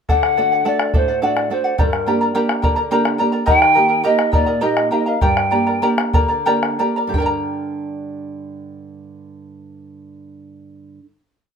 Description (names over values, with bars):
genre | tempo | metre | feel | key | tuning
andean folk, Andean ensemble | 57-71 BPM (dotted quarters) | 6/8 | straight | G harmonic minor | A4 = 440 Hz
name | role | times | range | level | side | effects
reedy pan flute | melody | 0.1-5.9 s | Bb4 to G5 | -17 LUFS | left 1 dB | none
charango | accompaniment | 0.1-11.2 s | G4 to Bb5 | -20 LUFS | left 1 dB | none
nylon-string guitar | accompaniment | 0.1-11.1 s | G2 to G5 | -23 LUFS | right 4 dB | none
bombo | percussion | 0.1-7.5 s | none | -19 LUFS | left 1 dB | none
room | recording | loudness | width
light reverb | minimal, uncompressed stereo recording | -15 LUFS | side -6 dB against mid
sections
0.1-7.1 A section; 7.1-11.3 final chord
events
slowing down 3.5-7.1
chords
0.1 D; 1.8 Gm; 3.5 Eb; 5.2 Gm